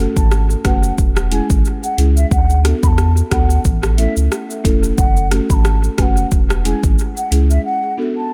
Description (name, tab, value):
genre	dancehall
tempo	90 BPM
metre	4/4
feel	swing 56% on 16ths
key	F# minor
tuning	A4 = 442 Hz
part	buzzing marimba with soft mallets	accompaniment	0.0-8.1 s	G#3 to B4	-24 LUFS	equal	dub echo
part	saturated sub bass	bass	0.0-7.6 s	E1 to E2	-18 LUFS	equal	none
part	mellow hollow wooden flute	melody	0.2-8.3 s	E5 to B5	-26 LUFS	equal	dub echo
part	afro-pop drum kit	drums	0.2-7.6 s	hi-hat, kick drum, rim click, shaker	-19 LUFS	equal	none
room	digital ambience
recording	echo-heavy mix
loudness	-15 LUFS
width	mono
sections	0.0-8.3 A section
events	break 7.6-8.3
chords	0.0 F#m; 1.0 C#m/E; 2.3 D6; 3.6 A; 5.0 F#m; 6.3 C#m/E; 7.6 D6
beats	0.32 0.98 1.65 | 2.31 2.98 3.65 4.32 | 4.98 5.65 6.32 6.98 | 7.65 8.31